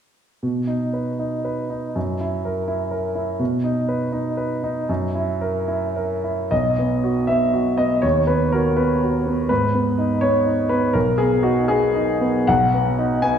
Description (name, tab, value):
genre	classical, romantic character piece for solo piano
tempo	69-84 BPM (dotted quarters)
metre	6/8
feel	rubato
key	B major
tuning	A4 = 441 Hz
part	warm grand piano	solo	0.4-13.4 s	B1 to G#5	-18 LUFS	equal	none
room	wet recital hall reverb, RT60 1.4 s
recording	recorded in a church or concert hall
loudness	-18 LUFS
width	side -8 dB against mid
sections	0.4-6.5 A section; 6.5-13.4 B section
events	none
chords	0.4 B; 2.0 F#7; 3.4 B; 4.9 F#7; 6.5 B; 8.0 B/D#; 9.5 G#m; 10.9 G#m/B